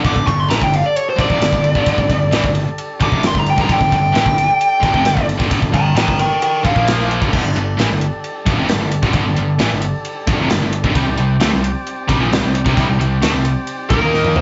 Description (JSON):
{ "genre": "hard rock", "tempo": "132 BPM", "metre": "4/4", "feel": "straight", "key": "G minor", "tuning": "A4 = 440 Hz", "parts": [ { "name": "overdriven tonewheel organ", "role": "sustained chords", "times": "0.0-14.4 s", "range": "G3 to F5", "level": "-30 LUFS", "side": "equal", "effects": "none" }, { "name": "distorted electric guitar", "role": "riff", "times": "0.0-14.4 s", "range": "F2 to Eb4", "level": "-24 LUFS", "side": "equal", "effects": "overdrive" }, { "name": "scooped high-gain guitar", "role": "riff", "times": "0.0-14.4 s", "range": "F2 to Eb4", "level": "-25 LUFS", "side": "equal", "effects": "distortion" }, { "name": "picked electric bass", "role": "bass", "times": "0.0-14.4 s", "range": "F1 to Eb2", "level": "-24 LUFS", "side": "equal", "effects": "none" }, { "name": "gated 80s drum kit", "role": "drums", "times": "0.0-14.4 s", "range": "crash cymbal, kick drum, ride cymbal, snare drum, toms", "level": "-21 LUFS", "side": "equal", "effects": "none" }, { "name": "dark smooth lead guitar", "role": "melody", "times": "0.1-6.9, 13.9-14.4 s", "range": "Bb4 to D6", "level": "-19 LUFS", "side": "equal", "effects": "overdrive" } ], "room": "moderate small room reverb, RT60 0.5 s", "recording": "rough rehearsal-room recording, warm saturation, nothing above 7.7 kHz", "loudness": "-16 LUFS", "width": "mono", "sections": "0.0-7.3 A section; 7.3-14.4 B section", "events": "lead electric guitar solo 0.0-7.3; drum fill 14.1", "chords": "0.0 G5; 6.8 Bb5; 7.2 G5; 10.9 C5" }